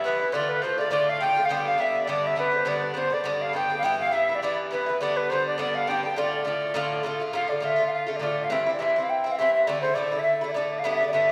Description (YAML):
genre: celtic folk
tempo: 206 BPM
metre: 4/4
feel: swing 55% on 8ths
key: D dorian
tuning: A4 = 440 Hz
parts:
  - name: bright wooden flute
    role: melody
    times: 0.0-11.3 s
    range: B4 to G5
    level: -27 LUFS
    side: equal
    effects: none
  - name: accordion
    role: second line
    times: 0.0-7.0 s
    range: B4 to G5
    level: -33 LUFS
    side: equal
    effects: none
  - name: Irish bouzouki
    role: accompaniment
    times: 0.0-11.3 s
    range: G2 to F4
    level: -31 LUFS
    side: equal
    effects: none
room: wet recital hall reverb, RT60 1.4 s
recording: recorded in a church or concert hall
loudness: -25 LUFS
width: mono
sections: 0.0-7.3 A section; 7.3-11.3 B section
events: none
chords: 0.3 Dm; 1.5 G; 3.8 Em; 5.0 G; 6.2 Dm; 8.5 C; 9.7 Dsus2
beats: 0.05 | 0.34 0.63 0.93 1.22 | 1.51 1.80 2.09 2.38 | 2.68 2.97 3.26 3.55 | 3.84 4.13 4.43 4.72 | 5.01 5.30 5.59 5.89 | 6.18 6.47 6.76 7.05 | 7.35 7.64 7.93 8.22 | 8.52 8.81 9.10 9.39 | 9.68 9.97 10.27 10.56 | 10.85 11.14